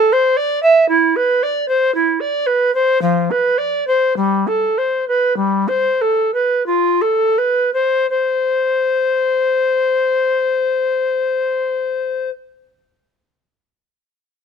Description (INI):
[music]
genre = classical, baroque-style fantasia for unaccompanied recorder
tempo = 41-60 BPM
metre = 3/4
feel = rubato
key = unclear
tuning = A4 = 440 Hz
[part]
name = bass recorder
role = solo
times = 0.0-12.3 s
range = F3 to E5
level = -14 LUFS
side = equal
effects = none
[sound]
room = little or no reverb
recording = close, detailed microphones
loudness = -14 LUFS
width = side -6 dB against mid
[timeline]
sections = 0.0-8.1 A section; 8.1-12.4 B section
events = slowing down 0.0-8.1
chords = none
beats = | 0.89 1.93 3.00 | 4.16 5.37 6.67 | 8.09 9.52 10.95